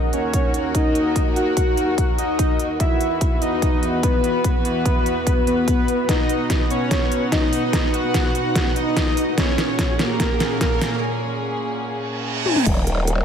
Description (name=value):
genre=heavy wobble dubstep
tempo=146 BPM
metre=4/4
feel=half-time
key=Eb phrygian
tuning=A4 = 439 Hz
part: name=soft supersaw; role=melody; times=0.0-11.0 s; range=Bb3 to Gb5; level=-23 LUFS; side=equal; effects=ping-pong delay
part: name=warm studio string section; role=sustained chords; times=0.0-13.2 s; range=Eb2 to F#5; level=-27 LUFS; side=equal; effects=sidechain pumping
part: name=airy breathy pad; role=texture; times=0.0-11.0 s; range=Bb2 to F#5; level=-26 LUFS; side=left 1 dB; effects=chorus, sidechain pumping
part: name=dubstep drum kit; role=drums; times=0.1-13.2 s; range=crash cymbal, hi-hat, snare drum, toms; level=-24 LUFS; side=left 1 dB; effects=none
part: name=electronic kick drum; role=drums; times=0.3-12.7 s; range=none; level=-21 LUFS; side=equal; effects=none
part: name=riser and reverse cymbal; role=sound effects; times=7.2-12.7 s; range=none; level=-30 LUFS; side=right 2 dB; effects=none
part: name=growl bass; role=bass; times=12.7-13.2 s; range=Eb1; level=-20 LUFS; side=equal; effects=chorus, overdrive
room=light reverb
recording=none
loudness=-18 LUFS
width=side -8 dB against mid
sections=0.0-12.7 A section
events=build-up 0.0-12.7; drum fill 6.1-11.0, 12.5; break 11.0-12.7; reverse cymbal 12.0-12.7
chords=0.0 Ebm; 2.8 Esus2; 6.1 B; 9.4 Gbadd9/Bb; 12.7 Eb5